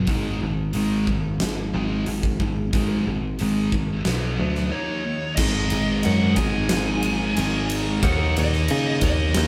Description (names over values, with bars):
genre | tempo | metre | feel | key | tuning
hard rock | 90 BPM | 4/4 | straight | G# minor | A4 = 440 Hz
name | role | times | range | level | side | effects
scooped high-gain guitar | riff | 0.0-9.5 s | G#2 to D#4 | -32 LUFS | equal | distortion
sludgy distorted guitar | riff | 0.0-9.5 s | G#2 to D#4 | -28 LUFS | equal | overdrive
picked electric bass | bass | 0.0-9.5 s | G#1 to C#3 | -28 LUFS | equal | none
huge arena drum kit | drums | 0.1-9.5 s | crash cymbal, hi-hat, kick drum, ride cymbal, snare drum | -29 LUFS | equal | none
dark smooth lead guitar | melody | 4.7-9.5 s | C#5 to G#5 | -31 LUFS | equal | overdrive
overdriven tonewheel organ | sustained chords | 5.4-9.5 s | G#3 to D#5 | -40 LUFS | equal | none
room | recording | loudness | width
moderate stone room reverb, RT60 1.2 s | band playing live in one room | -23 LUFS | mono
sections
0.0-5.4 A section; 5.4-9.5 B section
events
break 4.7-5.4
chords
0.1 G#5; 4.1 B5; 4.7 D#5; 5.4 G#5; 8.0 D#5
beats
| 0.07 0.74 1.40 2.06 | 2.73 3.39 4.05 4.72 | 5.38 6.04 6.71 7.37 | 8.03 8.69 9.35